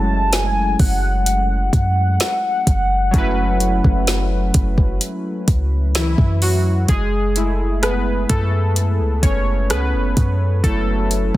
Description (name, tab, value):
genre	contemporary R&B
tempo	64 BPM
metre	4/4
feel	straight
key	F# minor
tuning	A4 = 440 Hz
part	warm velvety synth lead	melody	0.0-5.9 s	F#5 to A5	-21 LUFS	equal	chorus, tape echo
part	warm analog keys	accompaniment	0.0-11.4 s	E3 to C#5	-22 LUFS	equal	chorus
part	clean 808-style bass	bass	0.0-11.4 s	F#1 to F#2	-19 LUFS	equal	none
part	smooth R&B drum kit	drums	0.3-11.4 s	hi-hat, kick drum, rim click, snare drum	-18 LUFS	equal	none
room	little or no reverb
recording	dense, heavily limited modern master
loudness	-15 LUFS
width	side -16 dB against mid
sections	0.0-6.9 A section; 6.9-11.4 B section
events	synth keys solo 6.9-11.4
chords	0.0 F#m9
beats	0.32 1.26 2.20 | 3.14 4.07 5.01 5.95 | 6.89 7.82 8.76 9.70 | 10.64